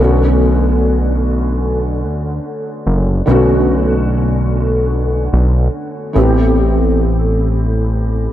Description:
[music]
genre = contemporary R&B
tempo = 73 BPM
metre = 4/4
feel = straight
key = B minor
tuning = A4 = 441 Hz
[part]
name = felt-muted upright piano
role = accompaniment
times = 0.0-8.3 s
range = D3 to G4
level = -16 LUFS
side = equal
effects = ensemble chorus
[part]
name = fat analog bass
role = bass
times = 0.0-8.3 s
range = F#1 to D2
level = -14 LUFS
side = equal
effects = none
[sound]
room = moderate lush hall reverb, RT60 2.7 s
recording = dreamy mix soaked in reverb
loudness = -12 LUFS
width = side -12 dB against mid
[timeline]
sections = 0.0-8.3 A section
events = none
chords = 0.0 Bm7; 6.2 Am7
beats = 0.81 1.63 2.45 | 3.27 4.10 4.92 5.74 | 6.56 7.38 8.21

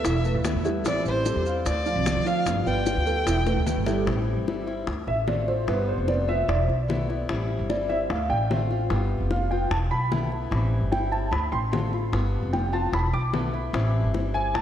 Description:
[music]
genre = latin, Cuban son and guajira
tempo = 149 BPM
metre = 4/4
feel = straight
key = A minor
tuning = A4 = 442 Hz
[part]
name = warm violin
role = melody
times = 0.0-3.9 s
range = C5 to G5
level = -29 LUFS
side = left 1 dB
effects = tape echo
[part]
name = picked acoustic archtop guitar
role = accompaniment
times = 0.0-14.6 s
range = D3 to F4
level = -32 LUFS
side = left 3 dB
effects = none
[part]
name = dark concert grand piano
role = arpeggios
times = 0.0-14.6 s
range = E3 to D6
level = -28 LUFS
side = right 2 dB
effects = analog chorus, tape echo
[part]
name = upright bass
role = bass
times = 0.0-14.6 s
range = E1 to D3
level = -26 LUFS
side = equal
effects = none
[part]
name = bongos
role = percussion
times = 0.0-14.6 s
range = none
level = -31 LUFS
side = left 4 dB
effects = none
[part]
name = maracas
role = percussion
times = 0.0-4.1 s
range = none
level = -41 LUFS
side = right 7 dB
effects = none
[sound]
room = moderate lush hall reverb, RT60 2.1 s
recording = dreamy mix soaked in reverb, cassette tape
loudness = -22 LUFS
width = side -10 dB against mid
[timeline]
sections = 0.0-4.1 A section; 4.1-14.6 B section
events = drum fill 3.5-4.1; grand piano solo 4.1-14.6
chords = 0.0 E7sus4; 0.9 Am7; 1.7 Dm7; 2.5 G7; 3.3 E7sus4; 4.1 Am7; 4.9 Dm7; 5.7 G7; 6.5 E7sus4; 7.3 Am7; 8.1 Dm7; 8.9 G7; 9.7 E7sus4; 10.5 Am7; 11.3 Dm7; 12.1 G7; 12.9 E7sus4; 13.7 Am7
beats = 0.05 0.45 | 0.85 1.26 1.66 2.06 | 2.46 2.87 3.27 3.67 | 4.07 4.48 4.88 5.28 | 5.68 6.09 6.49 6.89 | 7.29 7.70 8.10 8.50 | 8.90 9.31 9.71 10.11 | 10.52 10.92 11.32 11.72 | 12.13 12.53 12.93 13.34 | 13.74 14.14 14.54

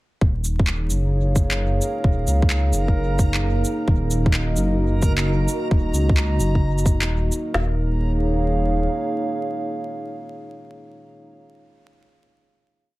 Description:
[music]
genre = future garage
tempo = 131 BPM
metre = 4/4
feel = swing 67% on 16ths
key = Eb minor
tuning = A4 = 441 Hz
[part]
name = dark analog pad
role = sustained chords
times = 0.2-11.5 s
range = Bb3 to F5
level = -26 LUFS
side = equal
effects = chorus, sidechain pumping
[part]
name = dark detuned saw bass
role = bass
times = 0.2-8.9 s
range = Eb1 to Db2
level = -21 LUFS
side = equal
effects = sidechain pumping
[part]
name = organic electronic drum kit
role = drums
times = 0.2-7.7 s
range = kick drum, snare drum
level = -19 LUFS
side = equal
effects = none
[part]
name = backwards swelling texture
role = texture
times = 1.2-7.6 s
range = Bb4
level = -34 LUFS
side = right 4 dB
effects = built-in reverb
[part]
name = electronic shaker and handclaps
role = drums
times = 0.4-7.4 s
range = none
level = -27 LUFS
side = equal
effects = none
[sound]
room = little or no reverb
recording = echo-heavy mix, vinyl crackle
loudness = -18 LUFS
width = side -18 dB against mid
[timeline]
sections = 0.2-7.5 groove; 7.5-11.2 final chord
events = none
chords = 0.2 Ebm7; 7.5 Eb5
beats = | 0.22 0.67 1.13 1.59 | 2.05 2.51 2.96 3.42 | 3.88 4.34 4.80 5.25 | 5.71 6.17 6.63 7.09 | 7.54 8.00 8.46 8.92 | 9.38 9.83 10.29 10.75

